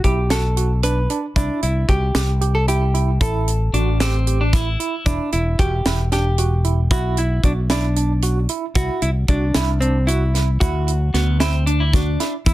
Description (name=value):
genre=progressive instrumental, band music in an uneven meter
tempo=227 BPM (eighths)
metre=7/8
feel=straight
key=unclear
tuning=A4 = 440 Hz
part: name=hollow-body jazz guitar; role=melody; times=0.0-12.5 s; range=C4 to B4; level=-24 LUFS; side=equal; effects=digital delay
part: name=overdriven tine electric piano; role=arpeggios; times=0.0-12.5 s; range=D4 to G4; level=-27 LUFS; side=right 7 dB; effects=medium tremolo
part: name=fretless electric bass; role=bass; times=0.0-12.5 s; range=E1 to E2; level=-19 LUFS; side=equal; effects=none
part: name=tight funk drum kit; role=drums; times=0.0-12.5 s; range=hi-hat, kick drum, snare drum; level=-20 LUFS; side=equal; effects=none
part: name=tube shaker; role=percussion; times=0.3-12.5 s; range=none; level=-38 LUFS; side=left 9 dB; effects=none
part: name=clean electric guitar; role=second line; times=3.7-5.1, 11.1-12.3 s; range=B3 to E4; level=-24 LUFS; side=left 1 dB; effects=none
room=light reverb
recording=dense, heavily limited modern master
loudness=-16 LUFS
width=side -16 dB against mid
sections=0.0-5.1 A section; 5.1-12.5 A section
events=none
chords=0.0 Bm; 1.4 C; 3.2 A5; 5.1 Em; 6.9 Bm; 8.8 Cadd9; 10.6 D